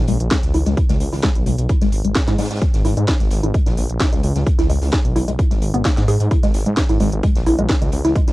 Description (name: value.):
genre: driving peak-time techno.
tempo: 130 BPM.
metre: 4/4.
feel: straight.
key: G# minor.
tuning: A4 = 440 Hz.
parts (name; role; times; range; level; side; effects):
woody wave-folded pluck; riff; 0.0-8.2 s; G#3 to G#4; -22 LUFS; left 1 dB; lush chorus, sidechain pumping, cassette tape, analog delay.
detuned saw bass; bass; 0.0-8.3 s; G#1 to G#2; -20 LUFS; equal; sidechain pumping.
open jazz drum kit; drums; 0.1-8.3 s; hi-hat, snare drum; -36 LUFS; right 1 dB; sidechain pumping on hats, high-pass filter on hats, cassette tape, high-pass filter on snare, high-pass filter on room.
techno drum kit; drums; 0.1-8.3 s; hi-hat, snare drum; -24 LUFS; equal; sidechain pumping on hats, cassette tape, sidechain pumping on cymbals.
electronic kick drum; drums; 0.3-8.3 s; none; -18 LUFS; equal; cassette tape.
room: light reverb.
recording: home recording on cassette.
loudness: -15 LUFS.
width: side -18 dB against mid.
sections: 0.0-8.3 A section.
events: filter sweep on synth arpeggio sound 0.0-8.3.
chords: 0.0 G#sus4.